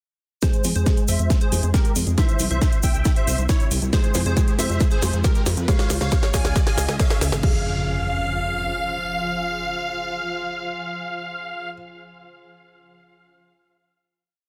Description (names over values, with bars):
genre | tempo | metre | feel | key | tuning
uplifting trance | 137 BPM | 4/4 | straight | F harmonic minor | A4 = 440 Hz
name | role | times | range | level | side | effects
dense compressed supersaw | melody | 0.4-11.7 s | E4 to Ab5 | -31 LUFS | equal | sidechain pumping, low-pass filter, digital delay
felt-muted upright piano | second line | 0.4-11.7 s | E3 to Ab4 | -33 LUFS | equal | none
plucky unison lead | second line | 0.4-11.7 s | Bb4 to Ab5 | -38 LUFS | equal | phaser, analog chorus, sidechain pumping, digital delay
shimmering ambient pad | sustained chords | 1.2-11.7 s | C3 to C5 | -36 LUFS | equal | chorus, built-in reverb, sidechain pumping
electronic kick drum | drums | 0.4-7.5 s | none | -22 LUFS | equal | none
house drum kit | drums | 0.4-7.5 s | crash cymbal, hi-hat, snare drum | -30 LUFS | equal | none
tube shaker | percussion | 0.4-7.4 s | none | -35 LUFS | equal | none
riser and impact | sound effects | 2.9-11.8 s | none | -38 LUFS | equal | none
plucky analog bass | bass | 0.6-8.7 s | Ab1 to F2 | -26 LUFS | equal | sidechain pumping
room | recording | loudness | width
digital ambience | dense, heavily limited modern master | -22 LUFS | mono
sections
0.4-7.4 build; 7.4-10.9 final chord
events
build-up 0.4-7.4; drum fill 0.4-7.4; filter sweep on supersaw synth 0.4-7.4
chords
0.4 Fm; 2.2 C; 3.9 Fm; 5.7 Db; 7.4 Fm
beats
| 0.43 0.86 1.30 1.74 | 2.18 2.62 3.05 3.49 | 3.93 4.37 4.81 5.24 | 5.68 6.12 6.56 7.00 | 7.43 7.87 8.31 8.75 | 9.19 9.62 10.06 10.50